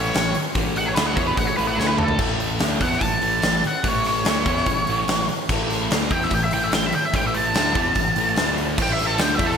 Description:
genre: blues rock power trio and southern rock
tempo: 146 BPM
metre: 4/4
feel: straight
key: A major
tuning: A4 = 444 Hz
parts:
  - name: octave-fuzz lead guitar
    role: melody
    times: 0.0-9.6 s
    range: A4 to A5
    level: -23 LUFS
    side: equal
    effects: wah, distortion, slapback echo
  - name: thick fuzz guitar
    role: riff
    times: 0.0-9.6 s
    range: A2 to E4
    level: -25 LUFS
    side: equal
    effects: distortion, slapback echo
  - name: growling fingered electric bass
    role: bass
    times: 0.0-9.6 s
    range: A1 to E2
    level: -29 LUFS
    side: equal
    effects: overdrive
  - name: big rock drum kit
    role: drums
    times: 0.1-9.6 s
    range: crash cymbal, hi-hat, kick drum, snare drum, toms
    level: -23 LUFS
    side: equal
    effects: none
room: moderate lush hall reverb, RT60 1.8 s, small room ambience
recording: big arena sound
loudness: -18 LUFS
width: side -7 dB against mid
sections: 0.0-2.2 A section; 2.2-9.6 A section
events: lead electric guitar solo 0.0-9.6; drum fill 1.8-2.2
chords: 0.0 A; 1.8 D5; 2.2 A; 8.4 D5; 8.8 A5

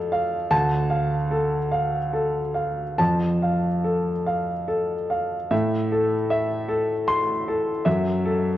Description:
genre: neoclassical minimalist piano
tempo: 46-52 BPM (dotted quarters)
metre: 6/8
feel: rubato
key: A minor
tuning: A4 = 439 Hz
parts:
  - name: warm grand piano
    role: solo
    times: 0.0-8.6 s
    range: D2 to C6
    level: -21 LUFS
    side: equal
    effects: none
room: moderate concert hall reverb, RT60 2.2 s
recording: worn, warbling old tape, cassette tape, warbly pitch drift, nothing above 10.8 kHz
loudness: -21 LUFS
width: side -13 dB against mid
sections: 0.0-5.5 A section; 5.5-8.6 B section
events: none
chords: 0.0 F; 0.5 Dm; 3.0 F; 5.5 Am; 7.9 F#m7

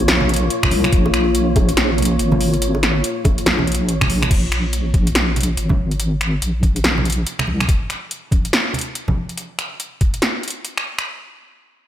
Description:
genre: deep dubstep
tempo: 142 BPM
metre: 4/4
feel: swing 61% on 16ths, half-time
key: Bb minor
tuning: A4 = 439 Hz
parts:
  - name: deep dark ambient pad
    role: sustained chords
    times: 0.0-4.4 s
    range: Bb3 to F4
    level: -23 LUFS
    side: left 2 dB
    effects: chorus, built-in reverb
  - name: deep soft wobble bass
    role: bass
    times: 0.0-7.7 s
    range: Ab1 to C2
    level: -19 LUFS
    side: equal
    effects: chorus
  - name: deep house drum kit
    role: drums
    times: 0.0-11.1 s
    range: crash cymbal, finger snaps, hi-hat, snare drum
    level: -20 LUFS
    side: equal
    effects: overdrive
  - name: wind-like tuned noise texture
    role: texture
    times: 0.0-4.3 s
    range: Db5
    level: -29 LUFS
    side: right 4 dB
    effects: built-in reverb
  - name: congas and bongos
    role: percussion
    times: 0.1-9.1 s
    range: none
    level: -25 LUFS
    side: right 2 dB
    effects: none
  - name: electronic kick drum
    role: drums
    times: 0.6-10.1 s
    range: none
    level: -17 LUFS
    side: equal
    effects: none
room: light reverb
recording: none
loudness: -16 LUFS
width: side -11 dB against mid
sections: 0.0-4.3 A section; 4.3-11.1 B section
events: drop 0.0-4.3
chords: 0.0 Bbm; 4.3 N.C.

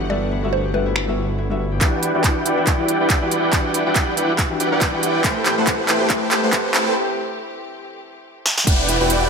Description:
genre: future bass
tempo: 140 BPM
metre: 4/4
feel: swing 56% on 16ths, half-time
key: E minor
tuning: A4 = 440 Hz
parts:
  - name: clear symphonic string section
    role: sustained chords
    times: 0.0-8.6 s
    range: E3 to F#5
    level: -31 LUFS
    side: right 1 dB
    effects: sidechain pumping
  - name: Celtic harp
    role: arpeggios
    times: 0.0-9.3 s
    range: D4 to C5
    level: -29 LUFS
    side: left 6 dB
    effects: sidechain pumping, digital delay
  - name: wide detuned saw bass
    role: bass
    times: 0.0-1.8, 8.7-9.3 s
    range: E1 to G1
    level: -23 LUFS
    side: equal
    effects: chorus, tube saturation, sidechain pumping
  - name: mallet-like synth pluck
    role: melody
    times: 0.1-1.0 s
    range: B4 to D5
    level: -26 LUFS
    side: right 1 dB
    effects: chorus, phaser, sidechain pumping, digital delay
  - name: felt-muted upright piano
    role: accompaniment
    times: 0.1-6.9 s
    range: E3 to E5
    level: -26 LUFS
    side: left 2 dB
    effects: sidechain pumping, digital delay
  - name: big-room dance drum kit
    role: drums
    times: 1.0-9.2 s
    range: crash cymbal, finger snaps, handclaps, hi-hat, snare drum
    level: -21 LUFS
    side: right 1 dB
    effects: low-pass filter on snare, low-pass filter on hats, low-pass filter on cymbals, low-pass filter on room
  - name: dense compressed supersaw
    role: riff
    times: 1.8-9.3 s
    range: A3 to G5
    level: -20 LUFS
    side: right 2 dB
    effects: sidechain pumping, low-pass filter, digital delay
  - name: electronic kick drum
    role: drums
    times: 1.8-8.8 s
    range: none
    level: -20 LUFS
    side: equal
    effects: none
  - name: downlifter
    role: sound effects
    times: 8.7-9.3 s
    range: none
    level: -22 LUFS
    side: left 1 dB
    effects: none
room: wet lush hall reverb, RT60 1.6 s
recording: high-pass filter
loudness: -16 LUFS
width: side -5 dB against mid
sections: 0.0-1.8 A section; 1.8-8.7 B section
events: filter sweep on string section 0.0-1.8; build-up 1.8-8.7; drum fill 1.8-7.0, 8.5; filter sweep 1.8-8.7; break 7.0-8.7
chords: 0.0 Gmaj13; 1.8 Em9; 5.2 Am7; 8.7 Em9

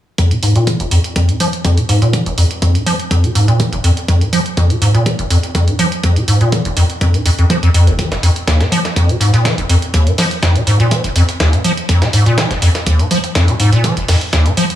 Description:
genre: acid house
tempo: 123 BPM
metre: 4/4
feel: straight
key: F minor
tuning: A4 = 440 Hz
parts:
  - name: acid bass, square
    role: riff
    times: 0.2-14.6 s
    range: F1 to F3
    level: -12 LUFS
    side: equal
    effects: tube saturation, ensemble chorus, dub echo
  - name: electronic hi-hat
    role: drums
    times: 0.2-14.8 s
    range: none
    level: -22 LUFS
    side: right 3 dB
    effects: none
  - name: electronic kick drum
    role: drums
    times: 0.2-14.4 s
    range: none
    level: -19 LUFS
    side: equal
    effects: high-pass filter on kick, high-pass filter on room
  - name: dusty soul sampler-style drum kit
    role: drums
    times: 8.0-14.7 s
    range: hi-hat, snare drum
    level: -21 LUFS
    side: equal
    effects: sidechain pumping on hats, high-pass filter on hats, high-pass filter on snare, high-pass filter on room
room: light reverb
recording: studio reverb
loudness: -11 LUFS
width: side -12 dB against mid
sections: 0.2-14.8 A section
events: filter sweep on acid bass 0.2-14.8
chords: none

